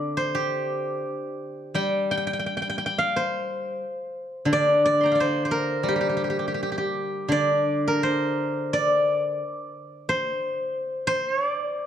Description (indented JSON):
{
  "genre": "chinese traditional, Chinese solo plucked strings",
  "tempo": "83-92 BPM",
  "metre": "2/4",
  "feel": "rubato",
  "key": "G yu mode",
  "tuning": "A4 = 440 Hz",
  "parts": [
    { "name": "steel-string zither", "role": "solo", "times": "0.0-11.9 s", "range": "D3 to C6", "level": "-23 LUFS", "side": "equal", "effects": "none" }
  ],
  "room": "moderate recital hall reverb, RT60 1.5 s",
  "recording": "dark, warm production",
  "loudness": "-22 LUFS",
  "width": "side -9 dB against mid",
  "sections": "0.0-7.3 A section; 7.3-11.9 B section",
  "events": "none",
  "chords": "none"
}